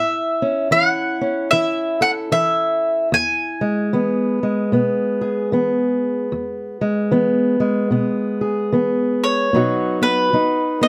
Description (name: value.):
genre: acoustic country blues, solo or duo.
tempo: 75 BPM.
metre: 4/4.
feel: swing 61% on 8ths.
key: E major.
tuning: A4 = 440 Hz.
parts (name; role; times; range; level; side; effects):
mandolin; melody; 0.0-4.4, 9.2-10.9 s; B4 to G#5; -20 LUFS; equal; none.
fingerpicked steel-string acoustic guitar; accompaniment; 0.0-10.9 s; E2 to A4; -21 LUFS; equal; none.
room: light reverb.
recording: close, detailed microphones.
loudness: -19 LUFS.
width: mono.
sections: 0.0-10.9 A section.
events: none.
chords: 0.0 A; 3.1 E; 9.5 B.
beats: 0.72 1.52 2.32 | 3.12 3.92 4.71 5.51 | 6.31 7.11 7.91 8.71 | 9.51 10.31.